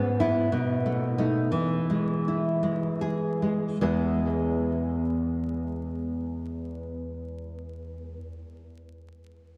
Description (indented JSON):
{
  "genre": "romantic piece for solo classical guitar",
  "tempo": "48-64 BPM",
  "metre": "2/4",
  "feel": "rubato",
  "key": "E major",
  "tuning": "A4 = 440 Hz",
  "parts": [
    { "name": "nylon-string guitar", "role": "solo", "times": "0.0-8.2 s", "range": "E2 to G#4", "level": "-28 LUFS", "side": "equal", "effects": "subtle chorus, tape echo" }
  ],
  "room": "wet cathedral reverb, RT60 5.6 s",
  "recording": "dreamy mix soaked in reverb, vinyl crackle",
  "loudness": "-28 LUFS",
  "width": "mono",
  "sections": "0.0-3.8 A section; 3.8-8.6 B section",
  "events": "slowing down 0.0-3.8",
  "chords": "0.0 E/G#; 0.5 B7; 1.5 E",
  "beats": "0.51 | 1.52 2.65 | 3.82 5.00 | 6.20 7.39"
}